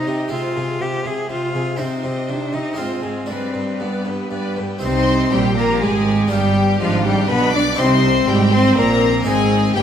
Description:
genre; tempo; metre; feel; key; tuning
classical, baroque-style concerto movement with solo episodes; 122 BPM; 3/4; straight; C minor; A4 = 440 Hz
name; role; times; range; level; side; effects
clear cello; melody; 0.0-9.8 s; F3 to Ab4; -20 LUFS; left 2 dB; none
rich chamber violin section; melody; 0.0-9.8 s; Eb5 to D6; -26 LUFS; left 7 dB; none
clear chamber violin section; second line; 0.0-9.8 s; F4 to Eb5; -24 LUFS; left 2 dB; none
harpsichord; accompaniment; 0.0-9.8 s; G2 to Ab4; -26 LUFS; equal; none
rich chamber viola section; accompaniment; 0.0-9.8 s; Bb3 to B4; -26 LUFS; right 2 dB; none
clear chamber cello section; bass; 0.1-9.8 s; G2 to C3; -24 LUFS; right 4 dB; none
rich chamber double bass section; bass; 4.8-9.8 s; G1 to C2; -22 LUFS; right 4 dB; none
room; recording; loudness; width
moderate concert hall reverb, RT60 1.9 s; none; -16 LUFS; side -8 dB against mid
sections
0.0-4.8 A section; 4.8-9.8 B section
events
none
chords
0.3 Fm/C; 1.8 Cm; 2.8 Fm/Ab; 3.3 G; 4.8 Cm; 6.3 G7; 7.8 Cm; 9.3 Ab

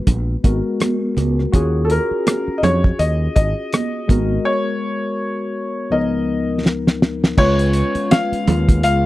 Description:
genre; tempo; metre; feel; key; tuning
lush 1970s-style soul; 82 BPM; 4/4; swing 58% on 16ths; unclear; A4 = 439 Hz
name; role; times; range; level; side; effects
barky tine electric piano; accompaniment; 0.0-9.1 s; Db2 to Cb5; -22 LUFS; left 2 dB; overdrive, lush chorus
fingered electric bass; bass; 0.1-9.1 s; Ab1 to F2; -18 LUFS; equal; none
cloth-damped thuddy drum kit; drums; 0.1-9.0 s; crash cymbal, hi-hat, kick drum, rim click, snare drum; -16 LUFS; equal; none
congas; percussion; 0.1-8.7 s; none; -24 LUFS; right 5 dB; none
warm concert grand piano; melody; 1.8-9.1 s; A4 to F5; -21 LUFS; left 1 dB; none
mellow French horn section; sustained chords; 7.4-9.1 s; Db3 to F4; -27 LUFS; left 1 dB; none
room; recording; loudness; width
studio ambience; dry, close 1970s-style studio recording; -16 LUFS; side -16 dB against mid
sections
0.0-7.4 A section; 7.4-9.1 B section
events
break 4.5-7.4; drum fill 6.7-7.4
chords
0.0 Abm9; 1.5 Ebm11; 4.1 Abm9; 5.9 Db13; 7.4 Db7

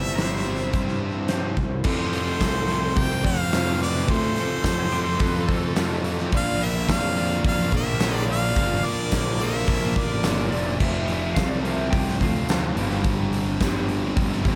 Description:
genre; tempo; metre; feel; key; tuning
classic rock; 107 BPM; 4/4; straight; unclear; A4 = 440 Hz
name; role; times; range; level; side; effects
clear harmonica; melody; 0.0-10.5 s; C5 to G5; -31 LUFS; equal; slapback echo
picked steel-string acoustic guitar; accompaniment; 0.0-14.6 s; G2 to Bb4; -38 LUFS; equal; none
crunchy overdriven guitar; riff; 0.0-14.6 s; F2 to C4; -32 LUFS; equal; none
sludgy distorted guitar; riff; 0.0-14.6 s; F2 to G4; -34 LUFS; equal; overdrive
fuzz picked electric bass; bass; 0.0-14.6 s; F1 to G2; -30 LUFS; equal; overdrive
clean lap steel guitar; second line; 0.2-1.6, 4.9-6.2, 10.5-13.9 s; G4 to G5; -36 LUFS; equal; slapback echo
big rock drum kit; drums; 0.2-14.6 s; crash cymbal, hi-hat, kick drum, snare drum; -28 LUFS; equal; none
fuzz lead guitar; second line; 1.9-10.5 s; A4 to D5; -35 LUFS; equal; distortion, slapback echo
tambourine; percussion; 2.4-13.7 s; none; -44 LUFS; equal; none
room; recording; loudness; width
moderate lush hall reverb, RT60 1.9 s, small room ambience; big arena sound; -23 LUFS; mono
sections
0.0-1.9 A section; 1.9-14.6 B section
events
none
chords
0.0 C/G; 1.9 F; 6.3 Bb; 10.8 F; 12.8 Gsus4

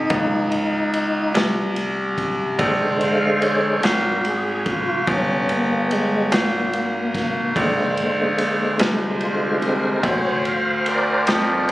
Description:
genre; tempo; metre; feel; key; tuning
slow blues; 48 BPM (dotted quarters); 12/8; straight; Bb mixolydian; A4 = 440 Hz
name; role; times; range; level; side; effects
tonewheel organ; sustained chords; 0.0-11.7 s; D3 to F5; -22 LUFS; equal; slow rotary speaker, overdrive, chorus vibrato
bright grand piano; bass; 0.0-11.7 s; G1 to F2; -21 LUFS; equal; none
raw garage drum kit; drums; 0.1-11.7 s; kick drum, ride cymbal, snare drum; -26 LUFS; equal; none
room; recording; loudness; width
light reverb; recorded on a phone in the room, club reverb, compression; -18 LUFS; side -17 dB against mid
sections
0.0-11.7 A section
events
tonewheel organ solo 0.0-11.7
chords
0.0 Eb7(no3); 2.6 Bb9

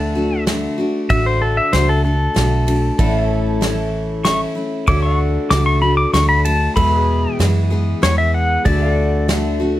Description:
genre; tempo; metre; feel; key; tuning
honky-tonk and classic country; 95 BPM; 3/4; straight; unclear; A4 = 437 Hz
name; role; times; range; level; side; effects
pedal steel guitar; melody; 0.0-9.3 s; A4 to D6; -19 LUFS; left 1 dB; none
picked steel-string acoustic guitar; accompaniment; 0.0-9.8 s; E2 to G#4; -21 LUFS; left 2 dB; none
pedal steel guitar; sustained chords; 0.0-9.8 s; G#4 to F#5; -27 LUFS; equal; none
vintage muted fingered electric bass; bass; 0.0-9.8 s; A1 to F#2; -18 LUFS; right 1 dB; none
natural country drum kit; drums; 0.5-9.4 s; kick drum, ride cymbal, snare drum; -22 LUFS; right 1 dB; none
room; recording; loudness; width
light reverb; close, detailed microphones; -14 LUFS; side -14 dB against mid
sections
0.0-9.8 A section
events
pedal steel guitar solo 0.0-9.8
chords
0.0 D; 3.0 A; 4.9 D; 6.8 E; 8.7 D

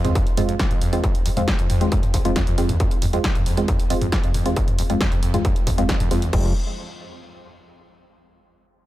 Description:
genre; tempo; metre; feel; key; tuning
driving peak-time techno; 136 BPM; 4/4; straight; F minor; A4 = 440 Hz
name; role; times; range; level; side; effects
overdriven acid bass; riff; 0.0-6.5 s; Eb2 to F2; -26 LUFS; equal; distortion, wide subtle chorus, sidechain pumping
wavetable chord stab; stabs; 0.0-6.5 s; Ab3 to F4; -25 LUFS; equal; sidechain pumping, dub echo
punchy analog drum machine; drums; 0.0-6.4 s; crash cymbal, hi-hat, snare drum, toms; -26 LUFS; equal; sidechain pumping on hats, sidechain pumping on toms, sidechain pumping on cymbals
electronic kick drum; drums; 0.2-6.4 s; none; -21 LUFS; equal; distortion
growling FM bass; bass; 6.3-6.5 s; F1; -24 LUFS; equal; sidechain pumping
room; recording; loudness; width
little or no reverb; none; -18 LUFS; side -15 dB against mid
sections
0.0-6.3 A section; 6.3-8.1 B section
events
filter sweep on synth stab 0.0-6.3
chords
0.0 Fm; 6.3 N.C.

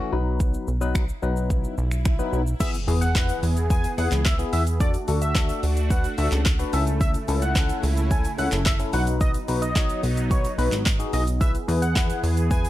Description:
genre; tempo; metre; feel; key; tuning
dance-pop; 109 BPM; 4/4; straight; E major; A4 = 442 Hz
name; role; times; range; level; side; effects
barky tine electric piano; accompaniment; 0.0-12.7 s; E3 to C#5; -30 LUFS; left 5 dB; phaser, sidechain pumping
swell and impact; sound effects; 1.4-4.8 s; none; -37 LUFS; equal; none
plucky analog bass; bass; 0.1-12.7 s; F#1 to E2; -24 LUFS; equal; sidechain pumping
deep house drum kit; drums; 0.4-12.7 s; crash cymbal, finger snaps, handclaps, hi-hat, kick drum, shaker, snare drum; -24 LUFS; equal; none
octave-doubled lead; melody; 2.6-12.7 s; B4 to G#5; -30 LUFS; equal; chorus
filtered supersaw swell; sustained chords; 2.6-12.7 s; C#3 to G#4; -31 LUFS; right 2 dB; sidechain pumping
egg shaker; percussion; 2.6-12.7 s; none; -44 LUFS; right 11 dB; none
room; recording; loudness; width
digital ambience; dark, warm production; -20 LUFS; side -14 dB against mid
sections
0.0-2.6 A section; 2.6-12.7 B section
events
swell 1.4-2.6; drop 2.6-12.7; impact 2.6-4.8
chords
0.1 B; 2.6 E; 4.8 D; 6.7 A/C#; 8.9 B; 11.4 E

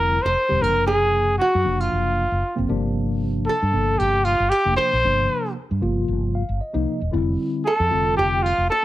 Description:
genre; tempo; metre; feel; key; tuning
jazz; 115 BPM; 4/4; swing 54% on 16ths; F major; A4 = 441 Hz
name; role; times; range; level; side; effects
breathy trumpet; melody; 0.0-8.8 s; E#4 to C5; -20 LUFS; equal; plate reverb
archtop guitar, miked and amplified; second line; 0.0-8.8 s; E#4 to C5; -27 LUFS; right 3 dB; plate reverb
mellow tine electric piano; accompaniment; 0.0-8.8 s; C3 to F5; -26 LUFS; left 1 dB; medium stereo tremolo, wide subtle chorus
mellow fretless electric bass; bass; 0.0-8.7 s; E1 to G2; -24 LUFS; equal; analog chorus
room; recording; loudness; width
moderate studio reverb, RT60 0.8 s; none; -18 LUFS; side -15 dB against mid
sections
0.0-8.8 A section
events
tine electric piano fill 6.1-7.1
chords
0.0 Fsus2; 0.6 D7alt/F#; 2.7 Gm7; 5.0 Eb69/G; 7.1 Fmaj9

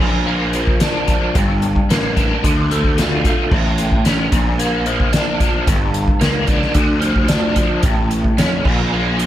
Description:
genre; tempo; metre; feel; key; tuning
psychedelic rock; 111 BPM; 4/4; straight; unclear; A4 = 445 Hz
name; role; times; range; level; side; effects
overdriven electric guitar; riff; 0.0-9.3 s; G2 to F4; -18 LUFS; equal; rotary speaker
fuzz picked electric bass; bass; 0.0-9.3 s; G1 to F2; -21 LUFS; equal; overdrive
soft-mallet drum kit; drums; 0.5-9.3 s; crash cymbal, hi-hat, kick drum, snare drum; -18 LUFS; equal; none
room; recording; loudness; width
light reverb, studio ambience; none; -14 LUFS; side -12 dB against mid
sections
0.0-9.3 A section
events
none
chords
0.0 Bb; 1.3 Gm; 2.4 Dm; 3.5 A; 4.3 Bb; 5.7 Gm; 6.8 Dm; 7.8 A; 8.7 Bb5

